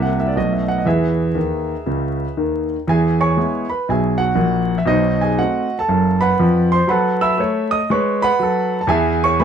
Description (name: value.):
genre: jazz, stride piano.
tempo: 120 BPM.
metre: 4/4.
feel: swing 63% on 8ths.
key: E major.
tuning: A4 = 440 Hz.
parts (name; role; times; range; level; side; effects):
clear concert grand piano; solo; 0.0-9.4 s; F#1 to E6; -15 LUFS; right 1 dB; none.
room: moderate studio reverb, RT60 0.6 s.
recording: vinyl crackle.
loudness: -15 LUFS.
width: side -8 dB against mid.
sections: 0.0-2.9 A section; 2.9-9.4 B section.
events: grand piano fill 1.4-2.9.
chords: 0.4 B5; 0.9 E; 4.9 B7b9; 6.9 B7/F#; 8.9 E.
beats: 0.35 | 0.85 1.36 1.86 2.36 | 2.87 3.37 3.87 4.37 | 4.88 5.38 5.88 6.38 | 6.88 7.38 7.89 8.39 | 8.89 9.39.